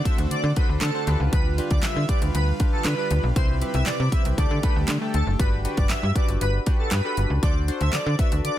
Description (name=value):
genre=dance-pop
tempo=118 BPM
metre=4/4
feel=straight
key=G major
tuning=A4 = 440 Hz
part: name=airy breathy pad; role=sustained chords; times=0.0-5.4 s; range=C3 to F#5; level=-34 LUFS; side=right 2 dB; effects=chorus, sidechain pumping
part: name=airy dreamy lead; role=melody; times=0.1-8.6 s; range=A4 to E5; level=-29 LUFS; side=equal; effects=chorus, sidechain pumping, ping-pong delay
part: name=chorused retro synth keys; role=accompaniment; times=0.1-8.6 s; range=A3 to C5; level=-31 LUFS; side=left 1 dB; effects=sidechain pumping
part: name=pop drum kit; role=drums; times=0.1-8.6 s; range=handclaps, hi-hat, kick drum, snare drum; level=-23 LUFS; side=equal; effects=none
part: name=slap-like FM bass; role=bass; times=0.2-8.5 s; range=F#1 to D3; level=-23 LUFS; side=equal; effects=sidechain pumping
part: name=group handclap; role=percussion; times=0.8-8.1 s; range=none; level=-34 LUFS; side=right 6 dB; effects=none
room=little or no reverb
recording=dense, heavily limited modern master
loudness=-20 LUFS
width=side -12 dB against mid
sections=0.0-5.4 A section; 5.4-8.6 A section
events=drop 0.0-5.4, 5.4-8.6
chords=0.0 D7; 1.1 G7; 3.4 Cmaj7; 4.4 Dsus4; 5.4 Gmaj7; 7.4 D7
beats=0.31 0.82 | 1.33 1.83 2.34 2.85 | 3.36 3.87 4.38 4.89 | 5.39 5.90 6.41 6.92 | 7.43 7.94 8.45